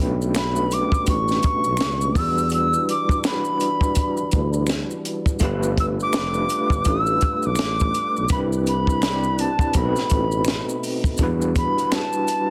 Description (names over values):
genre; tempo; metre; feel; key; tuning
R&B, neo-soul; 83 BPM; 4/4; swing 62% on 16ths; B phrygian; A4 = 440 Hz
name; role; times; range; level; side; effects
overdriven tine electric piano; accompaniment; 0.0-12.5 s; G3 to B5; -28 LUFS; equal; medium tremolo
percussive tonewheel organ; sustained chords; 0.0-11.2 s; B2 to B4; -36 LUFS; equal; slow rotary speaker, chorus vibrato
mellow tuba; bass; 0.0-11.8 s; F1 to E2; -27 LUFS; equal; none
compact cocktail drum kit; drums; 0.0-12.5 s; hi-hat, kick drum, snare drum; -26 LUFS; equal; none
maracas and finger snaps; percussion; 0.2-12.5 s; none; -36 LUFS; equal; none
jazz flute; melody; 0.4-12.5 s; A5 to E6; -26 LUFS; equal; none
room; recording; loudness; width
studio reverb; dense, heavily limited modern master; -21 LUFS; mono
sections
0.0-11.2 A section; 11.2-12.5 B section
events
none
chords
0.0 Bm9; 2.2 Em7; 5.4 G9; 8.3 Cmaj7; 9.7 B7b9; 11.2 Em9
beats
0.35 1.07 1.79 | 2.52 3.24 3.96 4.68 | 5.41 6.13 6.85 7.58 | 8.30 9.02 9.74 10.47 | 11.19 11.91